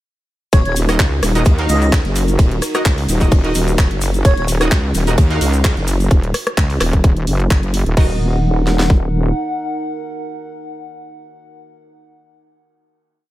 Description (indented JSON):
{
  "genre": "bass house",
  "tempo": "129 BPM",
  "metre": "4/4",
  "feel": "swing 54% on 16ths",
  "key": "Eb minor",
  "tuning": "A4 = 439 Hz",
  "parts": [
    { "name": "airy dreamy lead", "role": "melody", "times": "0.5-4.4 s", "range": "Db5 to Eb5", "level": "-24 LUFS", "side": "right 1 dB", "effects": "chorus, digital delay" },
    { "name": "dark analog pad", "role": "sustained chords", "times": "0.5-11.7 s", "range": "Eb4 to Gb5", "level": "-26 LUFS", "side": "equal", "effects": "wide subtle chorus, sidechain pumping" },
    { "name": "wobble bass", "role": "bass", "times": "0.5-9.3 s", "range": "Eb1 to Eb2", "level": "-16 LUFS", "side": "equal", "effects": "chorus, tube saturation, sidechain pumping" },
    { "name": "garage drum kit", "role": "drums", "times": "0.5-9.0 s", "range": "kick drum, snare drum", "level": "-12 LUFS", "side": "equal", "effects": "studio ambience" },
    { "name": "garage drum kit", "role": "drums", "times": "0.5-8.1 s", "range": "crash cymbal, handclaps, hi-hat, rim click", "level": "-23 LUFS", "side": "equal", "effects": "studio ambience" },
    { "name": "loose indie drum kit", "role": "drums", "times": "0.5-6.0 s", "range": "hi-hat, ride cymbal, snare drum", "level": "-32 LUFS", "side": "right 2 dB", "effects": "sidechain pumping on cymbals, high-pass filter on cymbals, studio ambience, sidechain pumping on hats, high-pass filter on hats, high-pass filter on snare, high-pass filter on room" },
    { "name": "tube shaker", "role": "percussion", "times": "0.5-6.1 s", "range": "none", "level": "-29 LUFS", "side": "left 4 dB", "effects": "none" },
    { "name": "orchestra-hit-like synth stab", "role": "stabs", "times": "0.9-11.7 s", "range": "Eb4 to F5", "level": "-24 LUFS", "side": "right 2 dB", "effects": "built-in reverb, sidechain pumping, digital delay" }
  ],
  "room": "small room ambience",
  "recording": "none",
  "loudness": "-13 LUFS",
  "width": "side -15 dB against mid",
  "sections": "0.5-8.0 drop; 8.0-11.7 final chord",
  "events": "drop 0.5-8.0",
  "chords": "0.5 Ebm"
}